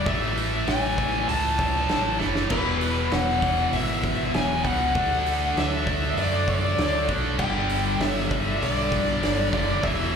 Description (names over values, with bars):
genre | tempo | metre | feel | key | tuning
hard rock | 98 BPM | 4/4 | straight | unclear | A4 = 440 Hz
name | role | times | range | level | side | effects
bluesy overdriven lead guitar | melody | 0.0-10.2 s | B4 to A5 | -26 LUFS | left 2 dB | distortion, slapback echo, plate reverb
chorused pulse-width pad | sustained chords | 0.0-10.2 s | E3 to F#5 | -37 LUFS | right 1 dB | plate reverb
scooped high-gain guitar | riff | 0.0-10.2 s | E2 to D4 | -30 LUFS | left 14 dB | distortion, slapback echo
scooped high-gain guitar | riff | 0.0-10.2 s | E2 to D4 | -29 LUFS | right 11 dB | distortion, slapback echo
growling fingered electric bass | bass | 0.0-10.2 s | E1 to F#2 | -29 LUFS | equal | overdrive
huge arena drum kit | drums | 0.1-10.0 s | crash cymbal, hi-hat, kick drum, snare drum | -29 LUFS | equal | none
room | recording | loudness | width
light reverb | live gig heard through the venue's PA, club reverb | -21 LUFS | side -6 dB against mid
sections
0.0-10.2 A section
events
drum fill 2.2-2.5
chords
0.1 A; 2.5 E; 4.9 D; 7.4 G